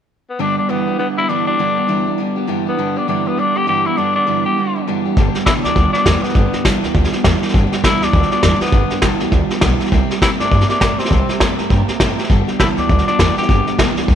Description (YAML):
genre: rockabilly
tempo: 202 BPM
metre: 4/4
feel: swing 61% on 8ths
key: G major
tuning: A4 = 440 Hz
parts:
  - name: raspy tenor saxophone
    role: melody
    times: 0.3-13.8 s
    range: B3 to G4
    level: -19 LUFS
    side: left 3 dB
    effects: none
  - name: picked steel-string acoustic guitar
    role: accompaniment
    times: 0.4-14.2 s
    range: G2 to G4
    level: -23 LUFS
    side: left 10 dB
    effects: none
  - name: electric guitar through a small old amp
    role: riff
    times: 0.4-14.2 s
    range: G2 to Bb3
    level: -21 LUFS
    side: right 13 dB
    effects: spring reverb
  - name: upright bass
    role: bass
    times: 5.2-14.2 s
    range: G1 to A2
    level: -19 LUFS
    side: equal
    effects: none
  - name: vintage brush drum kit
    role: drums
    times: 5.2-14.2 s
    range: hi-hat, kick drum, snare drum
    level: -16 LUFS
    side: equal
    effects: none
room: light reverb, studio ambience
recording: 1960s-style stereo with parts hard left and right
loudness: -13 LUFS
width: side -9 dB against mid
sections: 0.4-5.2 A section; 5.2-14.2 B section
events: none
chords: 0.4 G; 9.9 C; 12.3 G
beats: 0.10 | 0.40 0.69 0.99 1.29 | 1.59 1.89 2.18 2.48 | 2.78 3.08 3.37 3.67 | 3.97 4.27 4.56 4.86 | 5.16 5.46 5.75 6.05 | 6.35 6.64 6.94 7.24 | 7.54 7.83 8.13 8.43 | 8.73 9.02 9.32 9.62 | 9.91 10.21 10.51 10.81 | 11.11 11.40 11.70 12.00 | 12.29 12.59 12.89 13.19 | 13.48 13.78 14.08